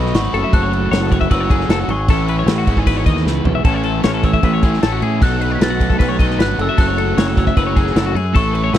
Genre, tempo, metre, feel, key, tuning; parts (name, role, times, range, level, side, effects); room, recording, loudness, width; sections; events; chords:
math rock and midwest emo; 153 BPM; 4/4; straight; A4 = 438 Hz
glockenspiel with rubber mallets; melody; 0.0-8.8 s; B5 to B6; -24 LUFS; left 1 dB; slapback echo
twelve-string electric guitar; arpeggios; 0.0-8.8 s; F#4 to E5; -23 LUFS; left 11 dB; slapback echo
crunchy overdriven guitar; riff; 0.0-8.8 s; G#2 to A4; -21 LUFS; right 3 dB
growling fingered electric bass; bass; 0.0-8.8 s; F#1 to A2; -19 LUFS; equal; overdrive
loose indie drum kit; drums; 0.1-8.8 s; crash cymbal, kick drum, snare drum, toms; -17 LUFS; equal
little or no reverb; dry, close 1970s-style studio recording; -13 LUFS; side -11 dB against mid
0.0-8.8 A section
drum fill 3.3-3.6
0.3 F#m7; 2.1 A; 2.7 Emaj7/G#; 3.6 Amaj7; 5.2 B7; 6.6 F#m7